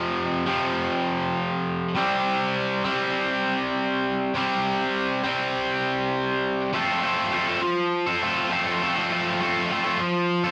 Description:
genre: rock.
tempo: 101 BPM.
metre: 4/4.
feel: straight.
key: F major.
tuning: A4 = 440 Hz.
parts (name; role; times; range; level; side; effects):
biting overdriven guitar; solo; 0.0-10.5 s; F2 to A4; -24 LUFS; equal; none.
room: wet large studio reverb, RT60 0.9 s.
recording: band playing live in one room.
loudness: -24 LUFS.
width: mono.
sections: 0.0-6.7 A section; 6.7-10.5 B section.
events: none.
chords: 0.0 F5; 2.0 C5; 6.7 F.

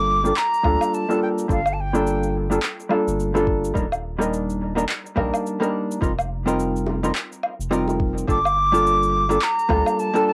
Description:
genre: sunset chillout.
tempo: 106 BPM.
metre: 4/4.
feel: swing 58% on 16ths.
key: G minor.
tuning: A4 = 438 Hz.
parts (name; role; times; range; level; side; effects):
breathy silver concert flute; melody; 0.0-2.4, 8.3-10.3 s; F5 to D6; -23 LUFS; equal; cassette tape, tape echo.
vintage hollow-body jazz guitar; accompaniment; 0.0-10.3 s; G3 to Bb4; -25 LUFS; equal; low-pass filter, cassette tape, analog delay.
round analog bass; bass; 0.0-9.8 s; Eb1 to D2; -29 LUFS; equal; tube saturation.
electronic cabasa, handclaps and woodblock; drums; 0.3-10.2 s; none; -30 LUFS; equal; cassette tape.
electronic kick drum; drums; 0.6-9.8 s; none; -27 LUFS; equal; cassette tape.
bongos; percussion; 3.4, 6.9-8.0 s; none; -34 LUFS; equal; none.
room: moderate booth ambience, RT60 0.2 s.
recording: home recording on cassette.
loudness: -22 LUFS.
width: mono.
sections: 0.0-10.3 A section.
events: filter sweep on hollow-body jazz guitar 0.0-10.3.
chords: 0.0 Gm9; 3.8 Ebmaj7; 6.0 F9sus4; 8.3 Gm9.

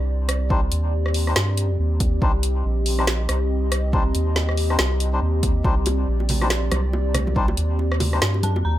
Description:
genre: deep dubstep.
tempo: 140 BPM.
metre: 4/4.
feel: swing 60% on 16ths, half-time.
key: C minor.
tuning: A4 = 440 Hz.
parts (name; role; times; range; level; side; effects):
dark analog pad; sustained chords; 0.0-8.8 s; C4 to Eb5; -28 LUFS; left 1 dB; chorus.
soft dub sub bass; bass; 0.0-8.8 s; Bb1 to G2; -21 LUFS; equal; none.
deep house drum kit; drums; 0.3-8.5 s; hi-hat, rim click, snare drum; -24 LUFS; equal; none.
melodica; stabs; 0.5-8.2 s; G3 to C5; -29 LUFS; left 3 dB; dub echo.
electronic kick drum; drums; 0.5-7.5 s; none; -21 LUFS; equal; none.
bongos and congas; percussion; 5.7-8.6 s; none; -29 LUFS; right 1 dB; dub echo.
dark detuned synth bell; melody; 8.4-8.8 s; A5 to Bb5; -28 LUFS; equal; chorus, tremolo.
room: little or no reverb.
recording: none.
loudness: -19 LUFS.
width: side -14 dB against mid.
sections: 0.0-8.8 A section.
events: none.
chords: 0.0 Cmadd9.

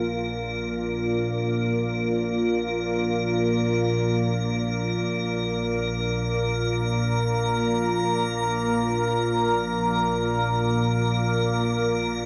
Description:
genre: dark ambient drone.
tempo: free time.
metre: none.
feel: none.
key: unclear.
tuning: A4 = 440 Hz.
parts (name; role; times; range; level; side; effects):
deep dark ambient pad; sustained chords; 0.0-12.3 s; Bb3 to Bb5; -28 LUFS; equal; chorus, built-in reverb.
organ-like drone; drone; 0.0-12.3 s; Bb1 to Bb2; -29 LUFS; equal; ensemble chorus, built-in reverb.
icy glass pad; texture; 0.0-12.3 s; Bb4; -31 LUFS; equal; chorus, built-in reverb.
room: wet huge ambient reverb, RT60 8.6 s.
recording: dreamy mix soaked in reverb, cassette tape.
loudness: -25 LUFS.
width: mono.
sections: 0.0-12.3 A section.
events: none.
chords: 0.0 Bb5.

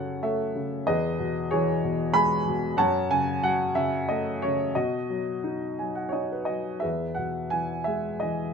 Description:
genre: classical, lyrical solo piano.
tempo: 83-96 BPM.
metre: 3/4.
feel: rubato.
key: E major.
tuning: A4 = 440 Hz.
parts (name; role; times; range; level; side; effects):
warm upright piano; solo; 0.0-8.5 s; E2 to B5; -24 LUFS; equal; none.
room: light reverb.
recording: close, detailed microphones.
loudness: -24 LUFS.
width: side -6 dB against mid.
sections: 0.0-6.8 A section; 6.8-8.5 B section.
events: upright piano fill 5.4-6.8.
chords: 0.0 F#m; 0.9 C#m7/E; 2.8 F#m; 4.8 B; 6.8 E.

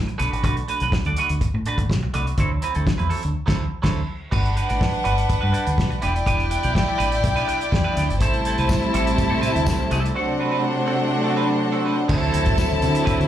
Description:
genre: disco.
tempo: 124 BPM.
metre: 4/4.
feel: straight.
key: unclear.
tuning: A4 = 441 Hz.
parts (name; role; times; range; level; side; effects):
deep dub fingered electric bass; bass; 0.0-13.3 s; E1 to D3; -23 LUFS; equal; none.
clean electric guitar; accompaniment; 0.1-13.2 s; F#3 to D5; -27 LUFS; right 5 dB; phaser, slapback echo.
warm soul drum kit; drums; 0.1-13.3 s; crash cymbal, hi-hat, kick drum, snare drum; -24 LUFS; equal; none.
rich chamber violin section; second line; 4.3-13.3 s; D4 to A5; -24 LUFS; left 1 dB; slapback echo.
dark chamber string section; sustained chords; 8.2-13.3 s; C3 to E4; -22 LUFS; equal; none.
tambourine; percussion; 8.2-13.2 s; none; -41 LUFS; left 4 dB; none.
room: light reverb.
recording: live gig heard through the venue's PA, club reverb.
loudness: -19 LUFS.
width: side -11 dB against mid.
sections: 0.0-4.3 A section; 4.3-12.1 B section; 12.1-13.3 C section.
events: band accent 3.4-4.3.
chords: 0.2 Bm7; 2.4 D9; 4.3 Gmaj7; 6.0 Em7; 8.2 Am7; 10.2 D7; 12.1 D9.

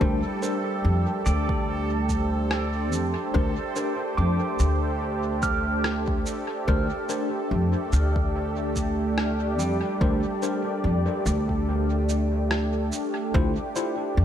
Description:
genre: ambient dub.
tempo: 72 BPM.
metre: 4/4.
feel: swing 56% on 16ths.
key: unclear.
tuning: A4 = 440 Hz.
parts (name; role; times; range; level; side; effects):
warm analog pad; sustained chords; 0.0-14.2 s; A3 to D5; -29 LUFS; right 1 dB; chorus.
pedal steel guitar; arpeggios; 0.0-12.2 s; G3 to F6; -34 LUFS; right 3 dB; dub echo.
tine electric piano; stabs; 0.0-13.9 s; D4 to C5; -34 LUFS; left 4 dB; overdrive, fast stereo tremolo, dub echo.
upright bass; bass; 0.0-14.2 s; D2 to F2; -24 LUFS; equal; none.
electronic kick drum; drums; 0.0-13.5 s; none; -28 LUFS; equal; none.
bubbling stepped-filter texture; texture; 0.0-13.4 s; A4; -37 LUFS; right 1 dB; chorus, built-in reverb.
electronic shaker and rim click; drums; 0.4-13.9 s; none; -34 LUFS; equal; dub echo.
room: light reverb, digital ambience.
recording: none.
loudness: -23 LUFS.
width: side -10 dB against mid.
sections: 0.0-13.3 A section.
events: kick drops out 11.7-13.3.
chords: 0.0 Bbadd9/D (rootless); 13.3 Dm9.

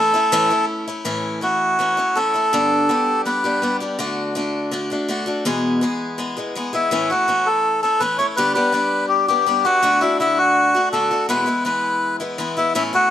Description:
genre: country.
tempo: 164 BPM.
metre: 4/4.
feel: straight.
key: A major.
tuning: A4 = 439 Hz.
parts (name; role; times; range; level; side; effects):
melodica; melody; 0.0-3.8, 6.7-13.1 s; E4 to C#5; -17 LUFS; left 1 dB; plate reverb.
picked swing-style acoustic guitar; accompaniment; 0.0-13.1 s; E2 to G#4; -22 LUFS; left 1 dB; none.
room: moderate studio reverb, RT60 0.8 s.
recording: none.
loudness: -17 LUFS.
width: side -10 dB against mid.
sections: 0.0-1.1 A section; 1.1-6.9 B section; 6.9-13.1 C section.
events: none.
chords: 0.0 A; 2.5 G; 4.0 D; 5.5 E; 6.9 A; 8.4 G; 9.8 D; 11.3 E.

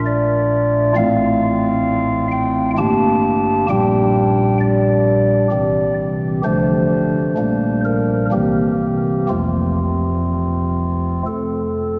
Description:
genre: classical, chorale-style piece for pipe organ.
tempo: 65 BPM.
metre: 3/4.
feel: uneven beats, rubato.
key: F major.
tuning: A4 = 435 Hz.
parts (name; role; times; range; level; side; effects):
chamber organ, stopped flute; solo; 0.0-12.0 s; F1 to A5; -17 LUFS; equal; none.
room: wet cathedral reverb, RT60 5.6 s.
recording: none.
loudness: -17 LUFS.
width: mono.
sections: 0.0-12.0 A section.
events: none.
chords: 0.0 Bbmaj7; 1.0 F/A; 2.8 Gm; 3.7 Gm/Bb; 5.5 C; 6.4 Dm; 7.4 Gm/Bb; 8.3 C7; 9.3 F.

